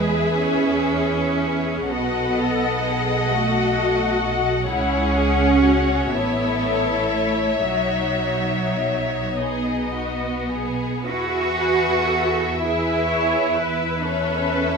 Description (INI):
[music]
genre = classical, slow romantic movement for string orchestra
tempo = 34-44 BPM (dotted quarters)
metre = 6/8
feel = rubato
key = E major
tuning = A4 = 440 Hz
[part]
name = muted symphonic violin section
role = melody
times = 0.0-14.8 s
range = D#5 to F#5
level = -27 LUFS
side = left 6 dB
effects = none
[part]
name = muted symphonic violin section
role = second line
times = 0.0-14.8 s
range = F#4 to D#5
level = -25 LUFS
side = left 4 dB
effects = none
[part]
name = muted symphonic viola section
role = accompaniment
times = 0.0-14.8 s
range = D#4 to C#5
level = -27 LUFS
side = left 2 dB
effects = none
[part]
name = muted symphonic cello section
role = bass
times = 0.0-14.8 s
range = F#3 to F#4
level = -23 LUFS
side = right 4 dB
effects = none
[part]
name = muted symphonic double bass section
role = bass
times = 0.0-14.8 s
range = A1 to E2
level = -27 LUFS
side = right 2 dB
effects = none
[sound]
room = moderate recital hall reverb, RT60 1.4 s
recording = close, detailed microphones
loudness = -18 LUFS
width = side -5 dB against mid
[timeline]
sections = 0.0-14.8 A section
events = none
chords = 0.0 E; 1.9 B7; 4.7 C#5; 6.1 A; 7.7 B; 11.1 E; 14.0 A/E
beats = 0.39 | 1.89 3.31 | 4.70 6.14 | 7.67 9.38 | 11.09 12.60 | 14.02